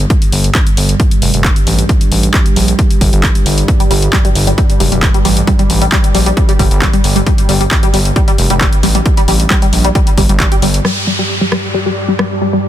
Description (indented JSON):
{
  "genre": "driving peak-time techno",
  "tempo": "134 BPM",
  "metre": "4/4",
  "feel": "straight",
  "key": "unclear",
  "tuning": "A4 = 439 Hz",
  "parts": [
    { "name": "gritty driven synth bass", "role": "bass", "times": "0.0-10.8 s", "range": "F1 to Bb1", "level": "-13 LUFS", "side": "equal", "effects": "sidechain pumping" },
    { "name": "analog drone", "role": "drone", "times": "0.0-12.7 s", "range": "G2 to G3", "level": "-20 LUFS", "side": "right 1 dB", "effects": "chorus, sidechain pumping" },
    { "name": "electronic kick drum", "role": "drums", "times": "0.1-10.5 s", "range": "none", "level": "-11 LUFS", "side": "equal", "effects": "overdrive, studio reverb" },
    { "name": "techno drum kit", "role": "drums", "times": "0.1-12.3 s", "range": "handclaps, hi-hat, rim click", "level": "-17 LUFS", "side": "equal", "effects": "overdrive, studio reverb" },
    { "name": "tight sequenced synth", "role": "riff", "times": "3.8-12.6 s", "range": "G3 to G4", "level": "-16 LUFS", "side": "left 1 dB", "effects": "chorus, phaser, overdrive, sidechain pumping, dub echo" },
    { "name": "downlifter", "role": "sound effects", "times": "10.8-12.7 s", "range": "none", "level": "-19 LUFS", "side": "equal", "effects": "none" },
    { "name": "granular cloud pad", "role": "texture", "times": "11.1-12.7 s", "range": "G4 to A5", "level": "-22 LUFS", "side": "equal", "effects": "built-in reverb, sidechain pumping" }
  ],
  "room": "little or no reverb",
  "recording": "dense, heavily limited modern master",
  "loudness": "-9 LUFS",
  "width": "side -12 dB against mid",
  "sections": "0.0-10.8 A section; 10.8-12.7 B section",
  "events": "filter sweep on synth arpeggio sound 10.8-12.7",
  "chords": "0.0 N.C.; 10.8 G5",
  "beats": "| 0.10 0.55 1.00 1.44 | 1.89 2.34 2.79 3.23 | 3.68 4.13 4.58 5.03 | 5.47 5.92 6.37 6.82 | 7.26 7.71 8.16 8.61 | 9.06 9.50 9.95 10.40 | 10.85 11.29 11.74 12.19 | 12.64"
}